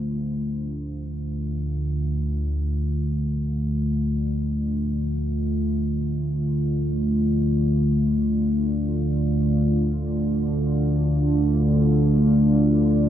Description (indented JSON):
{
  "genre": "dark ambient drone",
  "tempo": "free time",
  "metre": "none",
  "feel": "none",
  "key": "D minor",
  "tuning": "A4 = 439 Hz",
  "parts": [
    { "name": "deep dark ambient pad", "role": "sustained chords", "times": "0.0-13.1 s", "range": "A3 to D5", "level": "-24 LUFS", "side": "left 1 dB", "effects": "chorus, built-in reverb" },
    { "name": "analog drone", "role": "drone", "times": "0.0-13.1 s", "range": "D2 to D3", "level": "-23 LUFS", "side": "right 1 dB", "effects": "chorus, phaser" }
  ],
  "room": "wet cathedral reverb, RT60 6.7 s",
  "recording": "none",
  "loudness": "-20 LUFS",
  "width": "side -10 dB against mid",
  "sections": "0.0-13.1 A section",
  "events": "filter sweep on synth drone 0.0-13.1",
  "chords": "0.0 Dm",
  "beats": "free time"
}